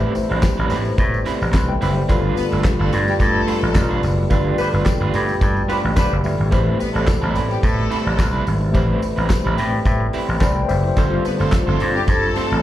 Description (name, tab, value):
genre	disco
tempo	108 BPM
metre	4/4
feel	straight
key	A minor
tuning	A4 = 440 Hz
part	electric guitar at the edge of break-up	accompaniment	0.0-12.6 s	G3 to C5	-27 LUFS	right 6 dB	tremolo, slapback echo
part	tine electric piano	accompaniment	0.0-12.6 s	G3 to C6	-26 LUFS	left 5 dB	medium tremolo, slapback echo
part	mellow French horn section	sustained chords	0.0-12.6 s	B2 to G4	-26 LUFS	equal	stereo widening
part	vintage slap bass	bass	0.0-12.6 s	F#1 to A2	-19 LUFS	equal	none
part	tambourine	percussion	0.1-12.5 s	none	-42 LUFS	left 2 dB	none
part	damped 70s drum kit	drums	0.2-12.5 s	handclaps, hi-hat, kick drum, snare drum	-19 LUFS	equal	none
part	clear studio string section	second line	2.4-12.6 s	G3 to B4	-25 LUFS	equal	none
part	mellow horn section	stabs	4.6-6.1 s	F3 to B4	-23 LUFS	equal	slapback echo
room	light reverb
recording	live gig heard through the venue's PA, club reverb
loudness	-16 LUFS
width	side -13 dB against mid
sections	0.0-12.6 A section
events	band accent 4.3-6.5; tine electric piano fill 5.7-6.5, 9.3-11.0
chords	0.0 Am9; 2.1 G9; 6.5 Am9; 11.0 G9sus4